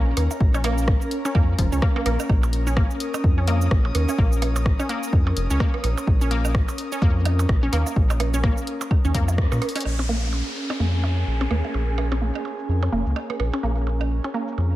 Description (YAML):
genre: minimal techno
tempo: 127 BPM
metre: 4/4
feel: swing 59% on 16ths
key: Bb minor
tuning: A4 = 439 Hz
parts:
  - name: round analog bass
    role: bass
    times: 0.0-14.8 s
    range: F1 to Bb2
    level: -22 LUFS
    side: equal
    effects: tube saturation, sidechain pumping
  - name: airy breathy pad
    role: texture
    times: 0.0-14.8 s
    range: Db4 to Eb6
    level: -30 LUFS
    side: equal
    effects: chorus, sidechain pumping
  - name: punchy analog drum machine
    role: drums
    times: 0.2-14.6 s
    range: hi-hat, rim click, shaker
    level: -32 LUFS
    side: equal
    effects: overdrive, low-pass filter on hats, low-pass filter on perc, low-pass filter on snare
  - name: percussion blips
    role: percussion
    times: 0.2-14.7 s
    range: none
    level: -33 LUFS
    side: right 7 dB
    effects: tape echo
  - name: electronic kick drum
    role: drums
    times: 0.4-9.5 s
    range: none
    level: -20 LUFS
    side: equal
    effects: overdrive
  - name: resonant blip pluck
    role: riff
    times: 0.5-14.4 s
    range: F3 to Db4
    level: -30 LUFS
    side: equal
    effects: chorus, cassette tape, sidechain pumping, tape echo
  - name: downlifter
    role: sound effects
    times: 9.9-13.6 s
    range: none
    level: -34 LUFS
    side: equal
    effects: none
  - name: pulsing gated texture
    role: texture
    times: 10.3-14.8 s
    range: Ab4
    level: -38 LUFS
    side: right 5 dB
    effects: chorus, built-in reverb, sidechain pumping
room: light reverb, digital ambience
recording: none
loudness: -20 LUFS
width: side -15 dB against mid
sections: 0.0-9.9 A section; 9.9-14.8 B section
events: drop 0.0-9.9; band accent 9.4; drum fill 9.6; filter sweep on synth arpeggio sound 9.9-14.8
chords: 0.0 Bbm; 9.9 Bbm7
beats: | 0.41 0.88 1.35 1.82 | 2.29 2.77 3.24 3.71 | 4.18 4.66 5.13 5.60 | 6.07 6.55 7.02 7.49 | 7.96 8.44 8.91 9.38 | 9.85 10.33 10.80 11.27 | 11.74 12.22 12.69 13.16 | 13.63 14.11 14.58